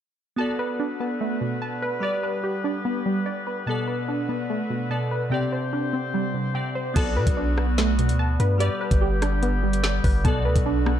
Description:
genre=hip hop, drill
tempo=146 BPM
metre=4/4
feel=half-time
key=B phrygian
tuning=A4 = 437 Hz
part: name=glassy digital keys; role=accompaniment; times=0.4-11.0 s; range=B2 to D5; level=-28 LUFS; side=left 1 dB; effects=chorus
part: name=clear woodwind section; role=sustained chords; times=0.4-11.0 s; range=D3 to C5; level=-33 LUFS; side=left 2 dB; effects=none
part: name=glassy wavetable pluck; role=arpeggios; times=0.4-11.0 s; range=B2 to A5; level=-27 LUFS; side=right 2 dB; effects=chorus, ping-pong delay
part: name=long sustained 808-style bass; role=bass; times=7.0-11.0 s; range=G1 to B2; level=-23 LUFS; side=equal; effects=none
part: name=drill drum kit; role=drums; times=7.0-11.0 s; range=crash cymbal, hi-hat, kick drum, rim click, snare drum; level=-24 LUFS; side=equal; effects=none
room=light reverb, digital ambience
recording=dark, warm production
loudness=-22 LUFS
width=side -10 dB against mid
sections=0.4-7.0 A section; 7.0-11.0 B section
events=none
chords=0.4 Bm7; 2.0 G; 3.7 Bm7; 5.3 Csus2; 7.0 Bm7; 8.6 G; 10.2 Bm7

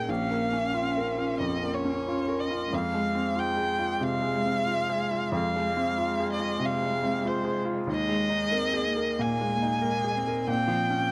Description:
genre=neoclassical piano and strings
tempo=92 BPM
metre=4/4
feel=rubato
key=Bb dorian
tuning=A4 = 439 Hz
part: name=dark violin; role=melody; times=0.0-11.1 s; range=C5 to Ab5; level=-31 LUFS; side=equal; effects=none
part: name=rich cello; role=second line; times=0.0-11.1 s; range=Ab3 to Db4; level=-37 LUFS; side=equal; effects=none
part: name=felt-muted upright piano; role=accompaniment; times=0.0-11.1 s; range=Bb1 to Bb4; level=-31 LUFS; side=equal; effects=none
room=little or no reverb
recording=none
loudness=-28 LUFS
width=mono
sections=0.0-11.1 A section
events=none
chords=0.1 Bbm; 2.7 Fm; 7.9 Ebsus4; 10.5 Bbm

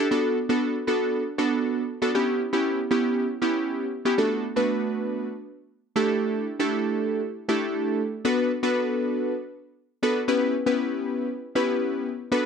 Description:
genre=pop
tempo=118 BPM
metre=4/4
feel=straight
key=B minor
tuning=A4 = 438 Hz
part: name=glassy digital keys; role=solo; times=0.0-12.5 s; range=A3 to B4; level=-23 LUFS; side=equal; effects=chorus
room=light reverb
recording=dry, close 1970s-style studio recording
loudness=-23 LUFS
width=side -6 dB against mid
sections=0.0-4.2 A section; 4.2-12.5 B section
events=build-up 0.0-4.2; drop 4.2-12.5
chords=0.1 Bm7; 2.1 C#m7b5; 4.2 Bm7; 6.0 A7sus4; 8.2 Bm7; 10.3 C#m7b5

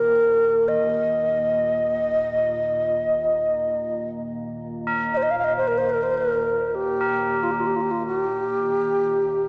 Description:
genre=world meditative, free-time meditation music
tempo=free time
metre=none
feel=none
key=Eb major pentatonic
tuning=A4 = 440 Hz
part: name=bright wooden-headed alto flute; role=melody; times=0.0-9.5 s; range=F4 to F5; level=-23 LUFS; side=equal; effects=tape echo
part: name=glassy FM pad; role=drone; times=0.0-9.5 s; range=Eb2 to Bb2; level=-35 LUFS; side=equal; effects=ensemble chorus, built-in reverb
part: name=tubular bells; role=texture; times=0.0-9.5 s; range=G4 to Bb4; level=-32 LUFS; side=equal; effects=none
room=wet lush hall reverb, RT60 2.5 s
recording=worn, warbling old tape, cassette tape, warbly pitch drift, small speaker sound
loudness=-23 LUFS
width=mono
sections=0.0-9.5 A section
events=none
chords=none

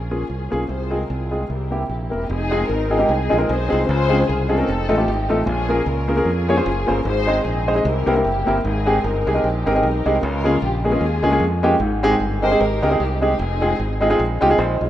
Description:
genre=uptempo gospel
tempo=151 BPM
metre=4/4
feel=swing 58% on 8ths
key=F minor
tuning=A4 = 441 Hz
part: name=muted studio string section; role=melody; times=0.0-14.1 s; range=Bb3 to C5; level=-25 LUFS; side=left 2 dB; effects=slapback echo
part: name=modern bright fingered electric bass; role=bass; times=0.0-14.9 s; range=E1 to F2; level=-23 LUFS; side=equal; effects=none
part: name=warm grand piano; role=accompaniment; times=0.1-14.9 s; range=Ab2 to Eb5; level=-19 LUFS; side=equal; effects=none
room=moderate plate reverb, RT60 2.9 s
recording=rough home demo mix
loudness=-17 LUFS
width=side -12 dB against mid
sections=0.0-2.3 A section; 2.3-14.9 B section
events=none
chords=0.0 Bbm7; 0.7 Fm/C; 1.5 C7; 2.3 Fm7; 3.9 Dbmaj7; 4.7 F7; 5.5 Bbm7; 7.1 Ab; 7.8 C7; 8.6 Abmaj7; 10.2 Bbm7; 11.8 Abmaj7; 13.4 Fm7

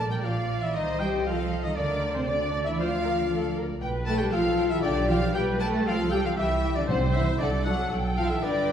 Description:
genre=quick classical-period movement for symphony orchestra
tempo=117 BPM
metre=4/4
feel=rubato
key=unclear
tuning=A4 = 437 Hz
part: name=warm studio violin section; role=melody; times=0.0-8.7 s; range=D5 to G5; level=-37 LUFS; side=left 1 dB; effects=none
part: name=bright oboe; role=second line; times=0.0-8.7 s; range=C5 to A5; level=-36 LUFS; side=right 2 dB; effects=none
part: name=mellow clarinet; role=second line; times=0.0-8.7 s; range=C5 to A5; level=-34 LUFS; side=right 2 dB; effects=none
part: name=rich studio violin section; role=second line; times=0.0-8.7 s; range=C5 to A5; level=-36 LUFS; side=left 2 dB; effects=none
part: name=rich studio viola section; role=accompaniment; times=0.0-8.7 s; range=G4 to D5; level=-34 LUFS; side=equal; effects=none
part: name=mellow French horn section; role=sustained chords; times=0.0-8.7 s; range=C4 to A4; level=-29 LUFS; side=left 4 dB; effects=none
part: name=warm studio cello section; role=bass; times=0.0-8.7 s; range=C3 to A3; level=-31 LUFS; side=right 2 dB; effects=none
part: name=warm studio double bass section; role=bass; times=0.0-8.7 s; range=G1 to D2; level=-30 LUFS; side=right 2 dB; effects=none
part: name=timpani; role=percussion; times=6.9-7.6 s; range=C3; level=-32 LUFS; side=equal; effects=none
room=wet recital hall reverb, RT60 1.3 s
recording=heard from further back in the room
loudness=-24 LUFS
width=side -9 dB against mid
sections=0.0-8.7 A section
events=none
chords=0.0 Bb; 0.8 F7/C; 1.8 Bb/D; 3.8 G7/B; 5.9 C; 6.9 D7/C; 7.9 G/B

